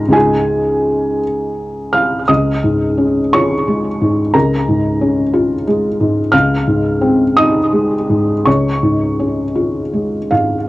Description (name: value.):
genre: neoclassical minimalist piano.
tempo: 52-61 BPM (dotted quarters).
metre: 6/8.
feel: rubato.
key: Db major.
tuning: A4 = 440 Hz.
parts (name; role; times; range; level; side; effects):
felt-muted upright piano; solo; 0.0-10.7 s; Db2 to F6; -12 LUFS; equal; analog delay.
room: moderate studio reverb, RT60 0.5 s.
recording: home recording on cassette.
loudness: -12 LUFS.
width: side -18 dB against mid.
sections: 0.0-10.7 A section.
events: none.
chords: 0.0 Ab6/Db; 2.3 Dbadd9; 4.3 Bbm7/Db; 6.3 Ab6/Db; 8.5 Db.